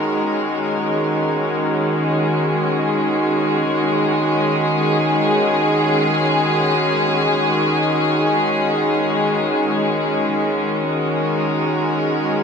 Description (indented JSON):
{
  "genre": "ambient",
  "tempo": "free time",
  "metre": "none",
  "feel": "none",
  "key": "F# major",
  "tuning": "A4 = 439 Hz",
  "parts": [
    { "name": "warm studio string section", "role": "solo", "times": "0.0-12.4 s", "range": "D#3 to A#4", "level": "-16 LUFS", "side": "equal", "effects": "none" }
  ],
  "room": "wet concert hall reverb, RT60 2.1 s",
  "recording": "none",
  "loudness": "-16 LUFS",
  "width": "side -6 dB against mid",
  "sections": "0.0-8.6 A section; 8.6-12.4 B section",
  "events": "none",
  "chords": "0.0 F#add9"
}